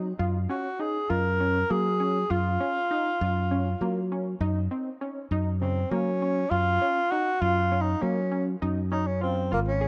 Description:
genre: progressive instrumental, band music in an uneven meter.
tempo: 200 BPM (eighths).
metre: 7/8.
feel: straight.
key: Gb lydian.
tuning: A4 = 440 Hz.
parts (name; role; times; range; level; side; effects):
tight sequenced synth; arpeggios; 0.0-9.9 s; Db3 to Ab4; -35 LUFS; equal; chorus, tape echo.
modern bright fingered electric bass; bass; 0.0-9.9 s; Ab1 to Gb3; -30 LUFS; equal; none.
breathy tenor saxophone; melody; 0.5-9.9 s; Bb3 to Bb4; -29 LUFS; equal; none.
room: light reverb, small room ambience.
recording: rough home demo mix.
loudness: -27 LUFS.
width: mono.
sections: 0.0-8.6 A section; 8.6-9.9 B section.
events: tenor saxophone solo 8.6-9.9.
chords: 0.2 Gbmaj7; 4.4 Ebm7/Gb; 6.5 Gbmaj7; 8.6 Db.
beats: | 0.20 0.50 0.80 1.10 1.40 1.70 2.00 | 2.30 2.60 2.90 3.21 3.51 3.81 4.11 | 4.41 4.71 5.01 5.31 5.61 5.91 6.21 | 6.51 6.81 7.11 7.42 7.71 8.02 8.32 | 8.62 8.92 9.22 9.52 9.82.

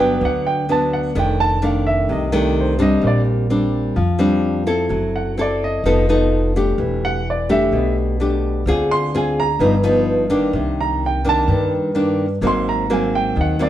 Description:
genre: bossa nova.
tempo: 128 BPM.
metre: 4/4.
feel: straight.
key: unclear.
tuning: A4 = 440 Hz.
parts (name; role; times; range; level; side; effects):
warm grand piano; melody; 0.0-13.7 s; G4 to C6; -21 LUFS; right 3 dB; none.
nylon-string guitar; accompaniment; 0.0-13.7 s; F2 to A4; -18 LUFS; left 1 dB; none.
upright bass; bass; 0.0-13.7 s; E1 to G2; -22 LUFS; equal; none.
room: moderate large studio reverb, RT60 1.1 s.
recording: band playing live in one room.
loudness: -16 LUFS.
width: side -12 dB against mid.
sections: 0.0-13.7 A section.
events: grand piano solo 0.0-13.7.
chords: 0.0 Gmaj7; 1.1 F13; 3.0 Bb69; 4.9 F#m7b5; 5.8 F7#11; 6.8 Em7; 8.7 Dm7b5; 9.6 G7alt; 10.5 Cm9; 12.4 Ab9.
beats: 0.21 0.68 | 1.15 1.62 2.09 2.56 | 3.03 3.50 3.96 4.43 | 4.90 5.37 5.84 6.31 | 6.78 7.25 7.72 8.19 | 8.66 9.13 9.60 10.07 | 10.54 11.01 11.48 11.95 | 12.42 12.89 13.36.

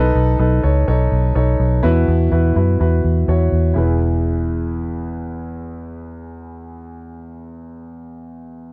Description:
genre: piano-driven pop.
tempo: 125 BPM.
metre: 4/4.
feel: straight.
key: E major.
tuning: A4 = 440 Hz.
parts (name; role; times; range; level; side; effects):
warm grand piano; accompaniment; 0.0-8.7 s; E2 to C#5; -24 LUFS; equal; none.
vintage muted fingered electric bass; bass; 0.0-6.8 s; E1 to F#2; -18 LUFS; equal; none.
room: little or no reverb.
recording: dry, close 1970s-style studio recording.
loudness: -17 LUFS.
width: mono.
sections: 0.0-3.8 A section; 3.8-7.6 B section.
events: none.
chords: 0.0 B7; 1.8 Esus2; 3.8 E.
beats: 0.40 0.88 1.36 | 1.84 2.32 2.80 3.28 | 3.76 4.24 4.72 5.21 | 5.69 6.17 6.65 7.13.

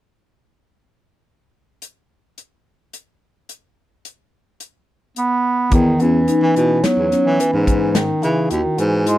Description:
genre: progressive instrumental, band music in an uneven meter.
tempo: 108 BPM.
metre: 7/4.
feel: straight.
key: unclear.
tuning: A4 = 440 Hz.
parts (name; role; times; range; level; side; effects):
natural country drum kit; drums; 1.8-9.2 s; hi-hat, kick drum, snare drum; -21 LUFS; equal; none.
clear bass clarinet; melody; 5.2-9.2 s; C#3 to B3; -19 LUFS; right 2 dB; none.
marimba with soft mallets; arpeggios; 5.7-9.2 s; B3 to F#4; -19 LUFS; left 2 dB; none.
breathy baritone saxophone; bass; 5.7-9.2 s; D#2 to E3; -19 LUFS; equal; none.
room: little or no reverb.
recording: dry, close 1970s-style studio recording.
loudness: -14 LUFS.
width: side -14 dB against mid.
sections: 1.8-5.7 A section; 5.7-9.2 B section.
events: none.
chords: 1.8 N.C.; 5.7 Emaj7.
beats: | 1.82 2.38 2.93 3.49 4.05 4.60 5.16 | 5.72 6.27 6.83 7.39 7.94 8.50 9.06.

